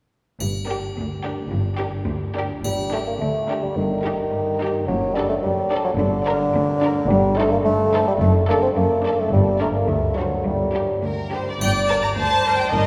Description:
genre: cinematic, playful, whimsical film cue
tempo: 108 BPM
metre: 2/4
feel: straight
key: G minor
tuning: A4 = 436 Hz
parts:
  - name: clear chamber double bass section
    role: bass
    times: 0.4-12.9 s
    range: F#1 to D2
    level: -30 LUFS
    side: equal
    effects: none
  - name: clear studio cello section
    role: bass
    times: 0.4-12.9 s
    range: D2 to G2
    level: -28 LUFS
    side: equal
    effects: none
  - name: triangle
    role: percussion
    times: 0.4-3.7, 11.6-12.7 s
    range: none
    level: -37 LUFS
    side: equal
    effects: none
  - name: rich studio violin section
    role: melody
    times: 0.7-12.9 s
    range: Bb4 to Bb5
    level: -29 LUFS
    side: equal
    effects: none
  - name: rich studio violin section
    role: second line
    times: 0.7-12.7 s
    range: F#4 to D5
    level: -32 LUFS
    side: equal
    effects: none
  - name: rich chamber viola section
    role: accompaniment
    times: 0.7-12.9 s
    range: D4 to D5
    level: -31 LUFS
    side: equal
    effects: none
  - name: mellow bassoon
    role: accompaniment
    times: 2.6-11.0 s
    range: D3 to C4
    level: -24 LUFS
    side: equal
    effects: none
room: wet cathedral reverb, RT60 5.6 s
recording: recorded in a church or concert hall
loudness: -21 LUFS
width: mono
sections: 0.4-2.6 A section; 2.6-11.6 B section; 11.6-12.9 B section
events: none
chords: 0.4 Gm; 3.8 Eb/G; 4.9 D/F#; 6.0 Gm; 7.1 Am7b5/G; 8.2 D/F#; 9.3 Gm; 9.9 D7; 10.5 Gm

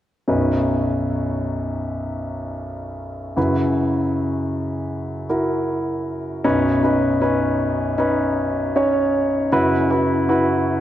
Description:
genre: pop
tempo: 78 BPM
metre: 4/4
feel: straight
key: B major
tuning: A4 = 439 Hz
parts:
  - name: warm concert grand piano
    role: solo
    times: 0.3-10.8 s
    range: B1 to C#5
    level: -18 LUFS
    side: equal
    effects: none
room: wet concert hall reverb, RT60 2.6 s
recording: worn, warbling old tape, cassette tape, warbly pitch drift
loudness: -18 LUFS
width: side -12 dB against mid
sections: 0.3-6.4 A section; 6.4-10.8 B section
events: none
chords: 0.3 Badd9; 3.4 F#7sus4; 6.4 Badd9; 9.5 F#7sus4

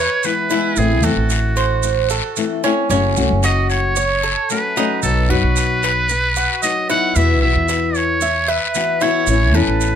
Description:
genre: latin, Cuban son and guajira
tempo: 113 BPM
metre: 4/4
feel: straight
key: unclear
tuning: A4 = 441 Hz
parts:
  - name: trumpet with metal mute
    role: melody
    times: 0.0-10.0 s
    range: F#4 to F#5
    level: -20 LUFS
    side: right 2 dB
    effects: none
  - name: Cuban tres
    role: arpeggios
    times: 0.0-10.0 s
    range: C#4 to E5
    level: -22 LUFS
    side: right 2 dB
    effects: none
  - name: upright bass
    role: bass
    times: 0.0-10.0 s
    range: F#1 to F#2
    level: -18 LUFS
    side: right 1 dB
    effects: none
  - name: nylon-string guitar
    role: accompaniment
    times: 0.2-10.0 s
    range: B2 to F#4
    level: -21 LUFS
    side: left 7 dB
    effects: none
  - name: guiro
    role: percussion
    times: 0.2-10.0 s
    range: none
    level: -28 LUFS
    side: left 8 dB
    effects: none
  - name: maracas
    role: percussion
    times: 0.2-10.0 s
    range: none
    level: -27 LUFS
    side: right 10 dB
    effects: none
room: little or no reverb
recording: close, detailed microphones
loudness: -14 LUFS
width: side -8 dB against mid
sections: 0.0-10.0 A section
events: none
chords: 0.0 E; 0.8 Am; 2.9 F#m; 5.0 B; 7.2 Esus2; 9.3 Aadd9

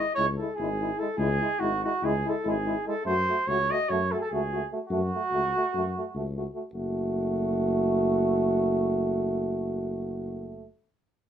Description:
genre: balkan folk, Balkan brass band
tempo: 293 BPM (eighths)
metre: 9/8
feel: straight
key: F# minor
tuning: A4 = 439 Hz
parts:
  - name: mellow cornet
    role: melody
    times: 0.0-6.3 s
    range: F#4 to D#5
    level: -28 LUFS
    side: right 2 dB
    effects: none
  - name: clear euphonium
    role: accompaniment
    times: 0.0-10.7 s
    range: G#3 to A3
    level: -33 LUFS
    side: right 4 dB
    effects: none
  - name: warm French horn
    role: accompaniment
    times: 0.0-10.7 s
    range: E4 to F#4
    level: -31 LUFS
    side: left 3 dB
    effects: none
  - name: dark tuba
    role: bass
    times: 0.2-10.7 s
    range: F#1 to F#2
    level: -30 LUFS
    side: left 1 dB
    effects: none
room: wet studio reverb, RT60 0.5 s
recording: minimal, uncompressed stereo recording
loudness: -25 LUFS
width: side -9 dB against mid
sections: 0.0-6.7 A section; 6.7-10.4 B section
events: none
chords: 0.0 C#m; 3.0 F#m

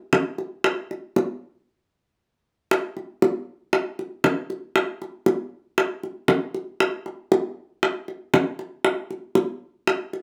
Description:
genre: latin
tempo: 117 BPM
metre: 4/4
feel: straight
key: none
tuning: none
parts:
  - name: bongos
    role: percussion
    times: 0.1-10.2 s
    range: none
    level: -23 LUFS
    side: equal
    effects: none
room: light reverb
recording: close, detailed microphones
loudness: -25 LUFS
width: mono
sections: 0.0-2.7 A section; 2.7-10.2 B section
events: stop 1.7-2.7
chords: none

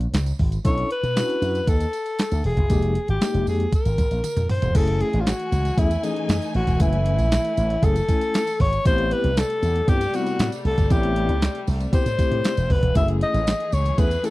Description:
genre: early-eighties boogie funk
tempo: 117 BPM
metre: 4/4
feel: straight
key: unclear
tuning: A4 = 440 Hz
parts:
  - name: slap bass with an envelope filter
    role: bass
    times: 0.0-14.2 s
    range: Eb1 to B2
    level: -23 LUFS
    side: equal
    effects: none
  - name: clean 12-bit digital drum machine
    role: drums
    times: 0.0-14.3 s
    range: crash cymbal, handclaps, hi-hat, kick drum, snare drum, toms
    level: -22 LUFS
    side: equal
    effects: none
  - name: tambourine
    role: percussion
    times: 0.1-14.3 s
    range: none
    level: -42 LUFS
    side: right 10 dB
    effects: none
  - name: overdriven tine electric piano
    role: accompaniment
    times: 0.6-14.3 s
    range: Fb3 to Ab5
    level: -27 LUFS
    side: left 3 dB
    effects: medium tremolo
  - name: breathy alto saxophone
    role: melody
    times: 0.7-14.3 s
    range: Eb4 to Fb5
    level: -24 LUFS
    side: left 1 dB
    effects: slapback echo
  - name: warm studio string section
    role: sustained chords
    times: 4.8-14.3 s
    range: C3 to Ab5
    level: -34 LUFS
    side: equal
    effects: none
room: digital ambience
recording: dry, close 1970s-style studio recording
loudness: -19 LUFS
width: side -18 dB against mid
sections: 0.0-4.8 A section; 4.8-14.3 B section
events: drum fill 4.2-4.8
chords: 0.0 Bbm7 (rootless); 0.7 Bm11; 2.7 Fm11; 4.8 Gbm9; 8.9 Am9; 13.0 Gbm9

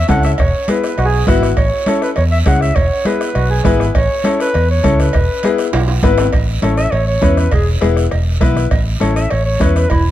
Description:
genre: latin, cumbia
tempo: 202 BPM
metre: 4/4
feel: straight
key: A major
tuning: A4 = 440 Hz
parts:
  - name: warm clarinet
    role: melody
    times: 0.0-10.0 s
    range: E4 to F#5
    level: -19 LUFS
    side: right 1 dB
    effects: slapback echo
  - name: fingered electric bass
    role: bass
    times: 0.0-10.1 s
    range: E1 to E2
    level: -15 LUFS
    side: equal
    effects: none
  - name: bright upright piano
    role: accompaniment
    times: 0.1-9.8 s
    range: B3 to B4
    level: -19 LUFS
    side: left 5 dB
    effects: none
  - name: bombo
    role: percussion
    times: 0.1-10.1 s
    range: none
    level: -18 LUFS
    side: right 1 dB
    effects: none
  - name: congas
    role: percussion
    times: 0.1-10.1 s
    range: none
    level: -22 LUFS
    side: right 1 dB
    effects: none
  - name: cowbell and timbales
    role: percussion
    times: 0.1-10.1 s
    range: none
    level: -26 LUFS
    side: right 5 dB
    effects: none
  - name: guiro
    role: percussion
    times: 0.1-10.1 s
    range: none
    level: -32 LUFS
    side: right 6 dB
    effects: none
  - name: mellow accordion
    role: second line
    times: 1.0-3.9 s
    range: E4 to G#4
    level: -22 LUFS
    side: right 4 dB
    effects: slapback echo
room: little or no reverb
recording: dark, warm production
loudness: -12 LUFS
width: side -13 dB against mid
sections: 0.0-6.3 A section; 6.3-10.1 B section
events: drum fill 5.7-6.3; clarinet solo 6.3-10.1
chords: 0.4 E; 1.6 A; 2.8 E; 4.0 A; 5.1 E; 6.3 A; 7.5 E; 8.7 A

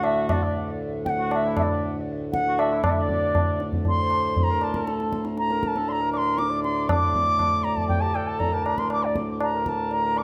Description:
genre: indian classical, Hindustani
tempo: 119 BPM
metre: 4/4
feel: straight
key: D raga charukeshi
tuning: A4 = 440 Hz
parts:
  - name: bright reedy bansuri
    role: melody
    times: 0.0-10.2 s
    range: D5 to E6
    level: -27 LUFS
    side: equal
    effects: tape echo
  - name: mellow cor anglais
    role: second line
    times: 0.0-10.2 s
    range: D4 to D5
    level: -34 LUFS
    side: equal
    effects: none
  - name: pedal harmonium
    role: drone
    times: 0.0-10.2 s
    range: D2 to A2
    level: -32 LUFS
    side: equal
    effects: none
  - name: tabla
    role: percussion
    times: 0.0-10.2 s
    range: none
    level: -29 LUFS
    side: equal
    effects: none
room: moderate recital hall reverb, RT60 1.5 s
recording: close, detailed microphones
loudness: -24 LUFS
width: mono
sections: 0.0-2.8 A section; 2.8-10.2 B section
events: none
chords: none

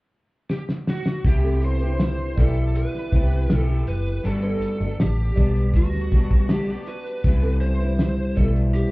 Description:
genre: indie pop, bedroom pop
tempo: 80 BPM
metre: 4/4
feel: straight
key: C lydian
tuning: A4 = 444 Hz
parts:
  - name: overdriven slide guitar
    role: melody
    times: 0.5-8.9 s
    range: F#4 to C5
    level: -30 LUFS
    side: equal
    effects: ensemble chorus, analog delay
  - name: cloth-damped thuddy drum kit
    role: drums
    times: 0.5-8.9 s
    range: hi-hat, kick drum, snare drum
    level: -21 LUFS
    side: equal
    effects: none
  - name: electric guitar through a small old amp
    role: accompaniment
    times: 1.2-8.9 s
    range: C3 to G4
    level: -27 LUFS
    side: left 1 dB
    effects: lush chorus, warbly pitch drift
  - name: vintage muted fingered electric bass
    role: bass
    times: 1.2-8.8 s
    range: F#1 to D2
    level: -22 LUFS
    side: equal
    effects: none
  - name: kalimba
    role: second line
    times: 1.4-8.6 s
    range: C4 to D5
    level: -35 LUFS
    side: right 4 dB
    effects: lush chorus, analog delay
room: small room ambience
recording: heard muffled through a wall, club reverb, EQ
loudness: -19 LUFS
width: side -22 dB against mid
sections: 0.0-1.2 A section; 1.2-8.9 B section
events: drum fill 0.5-1.2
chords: 0.0 N.C.; 1.2 Cmaj7; 4.2 Gmaj7; 7.2 Cmaj7

